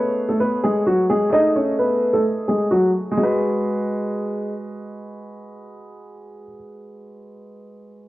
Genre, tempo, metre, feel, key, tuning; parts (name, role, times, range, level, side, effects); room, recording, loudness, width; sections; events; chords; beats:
hip hop; 130 BPM; 4/4; half-time; G# phrygian; A4 = 440 Hz
dark grand piano; melody; 0.0-4.5 s; F#3 to D#5; -18 LUFS; equal; low-pass filter
felt-muted upright piano; accompaniment; 0.0-8.1 s; G#3 to D#5; -27 LUFS; right 1 dB; low-pass filter, cassette tape
moderate spring reverb, RT60 1.8 s, small room reverb; home recording on cassette; -17 LUFS; side -17 dB against mid
0.0-3.2 A section; 3.2-6.9 B section
filter sweep 0.0-3.2
0.0 Amaj7; 3.2 G#m7
0.40 0.86 | 1.33 1.79 2.25 2.71 | 3.17 3.63 4.10 4.56 | 5.02 5.48 5.94 6.40